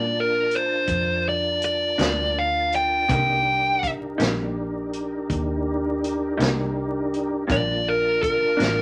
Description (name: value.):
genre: slow blues.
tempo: 55 BPM (dotted quarters).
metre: 12/8.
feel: straight.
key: G minor.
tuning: A4 = 440 Hz.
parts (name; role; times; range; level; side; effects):
dark smooth lead guitar; melody; 0.0-8.8 s; Bb4 to G5; -23 LUFS; equal; overdrive.
tonewheel organ; sustained chords; 0.0-8.8 s; Bb3 to A5; -31 LUFS; equal; slow rotary speaker, overdrive, chorus vibrato.
vintage muted fingered electric bass; bass; 0.0-8.8 s; A1 to Bb2; -33 LUFS; equal; none.
vintage drum kit; drums; 0.5-8.8 s; hi-hat, kick drum, snare drum; -30 LUFS; equal; none.
electric guitar through a small old amp; accompaniment; 2.0-8.8 s; G2 to Eb4; -30 LUFS; equal; tremolo.
room: wet club ambience, RT60 0.5 s.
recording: vinyl crackle.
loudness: -23 LUFS.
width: mono.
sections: 0.0-8.8 A section.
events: none.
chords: 0.0 Gm7 (rootless); 3.1 Cm7; 7.5 Gm7.